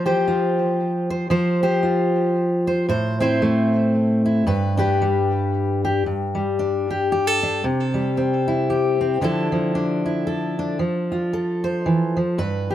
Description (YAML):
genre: folk, solo fingerstyle acoustic guitar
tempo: 114 BPM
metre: 3/4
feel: swing 58% on 8ths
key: G mixolydian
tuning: A4 = 440 Hz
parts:
  - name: fingerpicked steel-string acoustic guitar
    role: solo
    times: 0.0-12.7 s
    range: G2 to C5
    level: -18 LUFS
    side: equal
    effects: tape echo
room: light reverb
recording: none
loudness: -18 LUFS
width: side -12 dB against mid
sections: 0.0-6.0 A section; 6.0-12.4 B section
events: none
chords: 0.0 Fsus2; 2.9 Am; 4.5 G; 6.0 G5; 7.6 C; 9.2 Dmadd9; 10.8 F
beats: 0.26 0.78 | 1.31 1.83 2.36 | 2.89 3.41 3.94 | 4.46 4.99 5.52 | 6.05 6.57 7.10 | 7.63 8.16 8.69 | 9.21 9.74 10.27 | 10.80 11.33 11.86 | 12.39